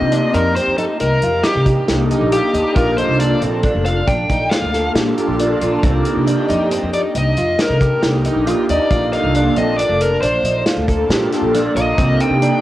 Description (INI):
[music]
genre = progressive instrumental, band music in an uneven meter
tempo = 137 BPM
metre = 7/4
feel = straight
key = C dorian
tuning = A4 = 441 Hz
[part]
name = dark smooth lead guitar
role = melody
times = 0.0-12.6 s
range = G4 to G5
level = -19 LUFS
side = left 2 dB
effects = overdrive, cassette tape, tape echo
[part]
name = airy breathy pad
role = accompaniment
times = 0.0-12.6 s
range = Bb3 to A4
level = -19 LUFS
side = equal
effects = chorus, phaser, cassette tape
[part]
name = fingerpicked twelve-string acoustic guitar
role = arpeggios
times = 0.0-12.6 s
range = C4 to A4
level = -22 LUFS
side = right 2 dB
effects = cassette tape, tape echo
[part]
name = upright bass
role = bass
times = 0.0-12.5 s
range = F1 to C3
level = -20 LUFS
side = equal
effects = none
[part]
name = warm soul drum kit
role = drums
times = 0.1-12.5 s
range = hi-hat, kick drum, snare drum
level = -21 LUFS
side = equal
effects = cassette tape
[sound]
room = moderate spring reverb, RT60 2.0 s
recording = home recording on cassette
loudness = -14 LUFS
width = side -14 dB against mid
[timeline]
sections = 0.0-12.6 A section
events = lead electric guitar solo 0.0-12.6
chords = 0.0 Cm7; 2.8 Gm7 (rootless); 5.8 Cm7; 8.9 Gm7 (rootless); 12.0 Cm7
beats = 0.12 0.56 1.00 1.44 1.88 2.32 | 2.76 3.20 3.64 4.08 4.52 4.96 5.39 | 5.83 6.27 6.71 7.15 7.59 8.03 8.47 | 8.91 9.35 9.78 10.22 10.66 11.10 11.54 | 11.98 12.42